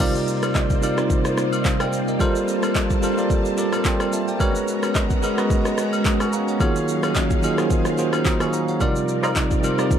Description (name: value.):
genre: amapiano.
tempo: 109 BPM.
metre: 4/4.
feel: swing 55% on 16ths.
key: C minor.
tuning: A4 = 443 Hz.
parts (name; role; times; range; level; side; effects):
bell-like tine electric piano; accompaniment; 0.0-10.0 s; C3 to Eb6; -22 LUFS; right 2 dB; fast stereo tremolo.
string machine, violas; sustained chords; 0.0-10.0 s; F3 to Bb5; -26 LUFS; left 1 dB; ensemble chorus.
deep house drum kit; drums; 0.0-10.0 s; crash cymbal, handclaps, kick drum, rim click, shaker; -23 LUFS; equal; none.
agogo bells and woodblock; percussion; 0.0-9.8 s; none; -31 LUFS; left 3 dB; none.
punchy chord stab; stabs; 9.2-9.3 s; C5 to Bb5; -28 LUFS; right 1 dB; chorus, tape echo.
room: little or no reverb.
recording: dry, gritty hardware recording.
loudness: -18 LUFS.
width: side -8 dB against mid.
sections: 0.0-10.0 A section.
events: none.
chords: 0.0 Cm11; 2.2 Gm11; 4.4 Abm11; 6.6 Ebm11; 8.8 Cm11.